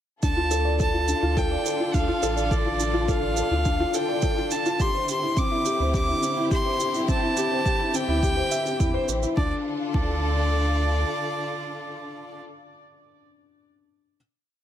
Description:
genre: piano and strings electronica.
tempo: 105 BPM.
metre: 4/4.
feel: straight.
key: D minor.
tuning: A4 = 440 Hz.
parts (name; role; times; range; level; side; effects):
rich violin; melody; 0.2-12.4 s; D5 to D6; -28 LUFS; right 1 dB; ping-pong delay.
dark studio string section; sustained chords; 0.2-12.4 s; D3 to A4; -32 LUFS; equal; none.
felt-muted upright piano; riff; 0.2-14.2 s; C4 to E5; -27 LUFS; left 2 dB; ping-pong delay.
warm sub bass; bass; 0.2-11.0 s; A1 to E2; -26 LUFS; equal; sidechain pumping.
electronic kick drum; drums; 0.2-10.1 s; none; -26 LUFS; equal; none.
shaker; drums; 0.2-9.3 s; none; -33 LUFS; right 10 dB; none.
room: light reverb, small room reverb.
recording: none.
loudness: -22 LUFS.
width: side -10 dB against mid.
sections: 0.2-9.4 drop; 9.4-11.7 final chord.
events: drop 0.2-9.4.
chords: 0.2 Dm; 4.8 C/D; 9.4 Dm.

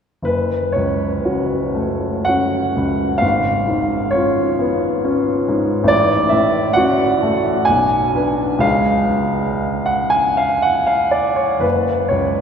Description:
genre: classical, romantic nocturne for solo piano.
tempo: 55-70 BPM.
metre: 3/4.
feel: rubato.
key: F# minor.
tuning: A4 = 440 Hz.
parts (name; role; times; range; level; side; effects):
warm upright piano; solo; 0.2-12.4 s; F#1 to G#5; -15 LUFS; equal; none.
room: wet cathedral reverb, RT60 6.2 s.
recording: recorded in a church or concert hall.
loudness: -15 LUFS.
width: side -7 dB against mid.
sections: 0.3-12.4 A section.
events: none.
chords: 0.3 F#m; 3.2 C#7/G#; 5.9 F#m/A; 7.7 G#dim/B; 8.6 C#; 11.6 F#5.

